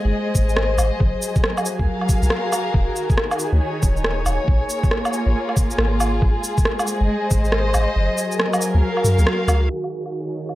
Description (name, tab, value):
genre	future garage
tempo	138 BPM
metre	4/4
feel	swing 64% on 16ths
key	Eb dorian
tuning	A4 = 441 Hz
part	dark studio string section	sustained chords	0.0-10.6 s	Eb3 to F5	-23 LUFS	left 1 dB	sidechain pumping
part	flickering grainy texture	texture	0.0-10.6 s	Ab4 to Ab5	-31 LUFS	right 1 dB	built-in reverb
part	soft 808-style bass	bass	0.1-9.7 s	Eb1 to Gb2	-19 LUFS	equal	sidechain pumping
part	electronic kick drum	drums	0.3-7.4 s	none	-19 LUFS	equal	none
part	electronic shaker, rim click and woodblock	drums	0.4-10.6 s	none	-23 LUFS	right 1 dB	overdrive, low-pass filter on perc, low-pass filter on snare, low-pass filter on room
room	little or no reverb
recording	dry, gritty hardware recording, transformer saturation, low-pass filter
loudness	-17 LUFS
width	side -16 dB against mid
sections	0.0-9.7 A section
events	kick drops out 8.0-9.7; band accent 9.3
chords	0.0 Ab; 1.0 Gbmaj7; 2.7 Ebm7; 4.5 Bbm7; 6.2 Ab; 8.0 Gbmaj7; 9.7 Ebm7